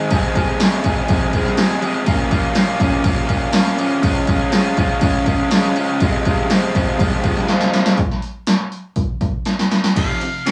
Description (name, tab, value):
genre	garage rock duo or trio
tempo	122 BPM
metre	4/4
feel	straight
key	F minor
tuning	A4 = 440 Hz
part	crunchy overdriven guitar	riff	0.0-10.5 s	F2 to Ab4	-20 LUFS	equal	none
part	punchy analog drum machine	drums	0.1-10.5 s	crash cymbal, hi-hat, kick drum, ride cymbal, snare drum	-20 LUFS	equal	none
part	octave-fuzz lead guitar	melody	10.0-10.5 s	Eb5 to F5	-25 LUFS	equal	distortion
room	wet booth ambience, RT60 0.2 s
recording	rough rehearsal-room recording, small room ambience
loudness	-17 LUFS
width	mono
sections	0.0-8.0 A section; 8.0-10.0 B section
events	drum fill 7.5-8.0, 9.5-10.0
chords	0.1 Fm; 2.1 Bbm; 4.0 Db; 6.0 Fm; 8.0 N.C.; 10.0 F5